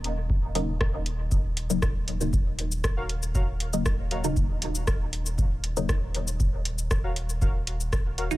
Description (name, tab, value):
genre	dub techno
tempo	118 BPM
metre	4/4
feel	straight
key	Eb minor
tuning	A4 = 440 Hz
part	pure sine sub bass	bass	0.0-8.4 s	Eb1	-31 LUFS	equal	sidechain pumping
part	soft vintage rhythm box	drums	0.0-8.4 s	hi-hat, rim click, shaker	-33 LUFS	left 1 dB	overdrive
part	electronic kick drum	drums	0.3-8.0 s	none	-26 LUFS	equal	none
part	filtered dub chord stab	stabs	0.6-8.4 s	Db3 to Eb4	-32 LUFS	left 1 dB	phaser, sidechain pumping, dub echo
part	warbly lo-fi synth keys	riff	3.0-8.2 s	Gb4 to F5	-38 LUFS	left 2 dB	chorus, sidechain pumping, dub echo
room	little or no reverb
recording	none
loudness	-24 LUFS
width	side -17 dB against mid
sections	0.0-8.4 A section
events	none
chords	0.0 Ebm7